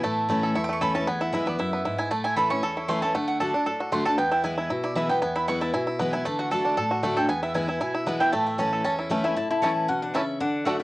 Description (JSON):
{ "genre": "bluegrass", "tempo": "232 BPM", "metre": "4/4", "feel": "straight", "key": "A major", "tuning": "A4 = 441 Hz", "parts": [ { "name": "picked steel-string acoustic guitar", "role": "accompaniment", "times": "0.0-10.8 s", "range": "E2 to F#4", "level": "-28 LUFS", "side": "left 1 dB", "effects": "cassette tape" }, { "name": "bluegrass banjo", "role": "arpeggios", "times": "0.0-10.7 s", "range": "A3 to A4", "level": "-27 LUFS", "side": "equal", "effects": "cassette tape" }, { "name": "mandolin", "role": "stabs", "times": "0.0-10.8 s", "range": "A3 to D6", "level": "-27 LUFS", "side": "right 2 dB", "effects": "cassette tape" }, { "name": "mandolin", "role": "melody", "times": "9.1-10.8 s", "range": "E5 to A5", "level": "-28 LUFS", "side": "left 1 dB", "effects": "cassette tape" }, { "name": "lap resonator guitar", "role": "second line", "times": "9.1-10.8 s", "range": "A3 to E4", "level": "-28 LUFS", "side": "left 4 dB", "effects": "cassette tape" } ], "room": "light reverb", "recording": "home recording on cassette", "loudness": "-23 LUFS", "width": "side -19 dB against mid", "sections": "0.0-1.1 A section; 1.1-9.4 A section; 9.4-10.8 B section", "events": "mandolin solo 0.0-9.4", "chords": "0.0 A; 1.1 E; 2.1 A; 3.1 D; 4.2 E; 6.3 D; 7.3 E; 8.3 A" }